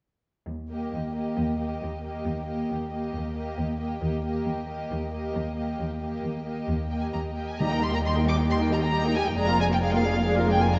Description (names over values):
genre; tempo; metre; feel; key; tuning
quick classical-period movement for symphony orchestra; 135 BPM; 4/4; straight; Eb major; A4 = 442 Hz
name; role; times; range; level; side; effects
warm studio cello section; bass; 0.5-10.8 s; Eb2 to F2; -32 LUFS; equal; none
dark studio violin section; melody; 0.7-10.8 s; Eb5 to D6; -35 LUFS; equal; none
dark studio violin section; second line; 0.7-10.8 s; G4 to G5; -36 LUFS; equal; none
rich studio viola section; accompaniment; 0.7-10.8 s; G3 to Ab4; -32 LUFS; equal; none
dark studio double bass section; bass; 7.6-10.8 s; F1 to Eb2; -32 LUFS; equal; none
timpani; percussion; 7.6-8.2 s; Eb3; -35 LUFS; equal; none
room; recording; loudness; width
wet concert hall reverb, RT60 2.1 s; nothing above 7.7 kHz; -27 LUFS; mono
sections
0.5-7.6 A section; 7.6-10.8 B section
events
none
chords
0.5 Eb; 9.4 Bb7/F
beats
| 0.48 0.93 1.37 1.82 | 2.26 2.70 3.14 3.58 | 4.02 4.46 4.91 5.35 | 5.79 6.24 6.69 7.14 | 7.60 8.05 8.49 8.94 | 9.38 9.83 10.28 10.72